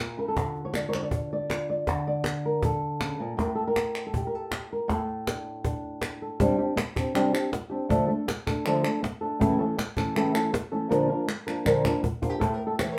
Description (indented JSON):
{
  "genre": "flamenco",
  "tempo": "159 BPM",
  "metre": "4/4",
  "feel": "straight",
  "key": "A phrygian dominant",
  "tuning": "A4 = 440 Hz",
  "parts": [
    { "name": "flamenco guitar", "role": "melody", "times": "0.0-13.0 s", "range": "A2 to D5", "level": "-29 LUFS", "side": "equal", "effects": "none" },
    { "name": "cajon", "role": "percussion", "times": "0.4-13.0 s", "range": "none", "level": "-33 LUFS", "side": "equal", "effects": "none" },
    { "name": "palmas hand claps", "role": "percussion", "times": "0.4-13.0 s", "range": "none", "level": "-37 LUFS", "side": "equal", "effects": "none" }
  ],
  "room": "wet studio ambience, RT60 0.5 s",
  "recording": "band playing live in one room",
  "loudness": "-28 LUFS",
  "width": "mono",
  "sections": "0.0-6.4 A section; 6.4-12.4 B section",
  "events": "drum fill 10.9-12.4",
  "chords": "0.4 Dm; 3.4 Asus4; 6.4 Csus2; 7.9 Dm; 9.4 A; 10.9 Bb; 12.4 A5"
}